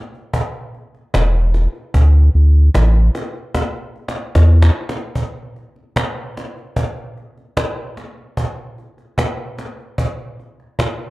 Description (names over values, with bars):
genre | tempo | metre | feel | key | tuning
dub reggae | 75 BPM | 4/4 | straight | unclear | A4 = 439 Hz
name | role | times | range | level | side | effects
cajon | drums | 0.1-11.1 s | none | -22 LUFS | equal | none
warm sub bass | bass | 1.1-4.7 s | E1 to E2 | -10 LUFS | equal | none
room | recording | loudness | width
little or no reverb | none | -15 LUFS | side -21 dB against mid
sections
0.0-5.2 A section; 5.2-11.1 B section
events
drum fill 3.5-5.2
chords
none